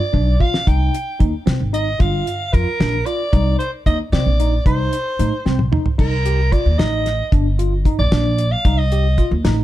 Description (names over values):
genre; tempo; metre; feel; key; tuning
progressive instrumental, band music in an uneven meter; 226 BPM (eighths); 5/8; straight; C dorian; A4 = 439 Hz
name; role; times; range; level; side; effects
raspy soprano saxophone; melody; 0.0-9.3 s; Bb4 to G5; -23 LUFS; right 2 dB; ping-pong delay
tine electric piano; arpeggios; 0.1-9.6 s; C4 to G4; -25 LUFS; equal; medium stereo tremolo
upright bass; bass; 0.1-9.6 s; G1 to C3; -18 LUFS; equal; none
damped 70s drum kit; drums; 0.1-9.6 s; crash cymbal, hi-hat, kick drum, snare drum, toms; -18 LUFS; equal; none
room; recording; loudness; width
light reverb; dark, warm production; -15 LUFS; side -14 dB against mid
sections
0.0-6.0 A section; 6.0-9.6 B section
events
drum fill 0.1-0.7, 5.5-6.0; soprano saxophone solo 6.0-9.6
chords
0.0 Bb (rootless); 0.7 Cm; 2.0 Gm7; 3.3 Cm7; 4.7 Cm; 6.0 Cm7; 7.3 Gm; 8.6 Cm